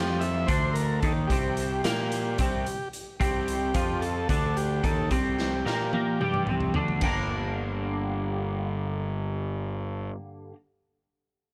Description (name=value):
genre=psychedelic rock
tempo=220 BPM (eighths)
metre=7/8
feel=straight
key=G minor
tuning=A4 = 440 Hz
part: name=overdriven combo organ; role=melody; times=0.0-6.4 s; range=G4 to E5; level=-34 LUFS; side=equal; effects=digital delay
part: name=twangy electric guitar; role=riff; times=0.0-10.6 s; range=G2 to Bb4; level=-33 LUFS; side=equal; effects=flanger
part: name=fuzz picked electric bass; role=bass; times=0.0-10.1 s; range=G1 to Bb2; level=-32 LUFS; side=equal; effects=overdrive
part: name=raw garage drum kit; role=drums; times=0.2-7.1 s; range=crash cymbal, hi-hat, kick drum, snare drum, toms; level=-33 LUFS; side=equal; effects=none
room=studio reverb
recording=none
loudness=-28 LUFS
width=mono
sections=0.0-7.0 A section; 7.0-10.8 B section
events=drum fill 5.4-7.0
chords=0.0 C5; 7.0 Gm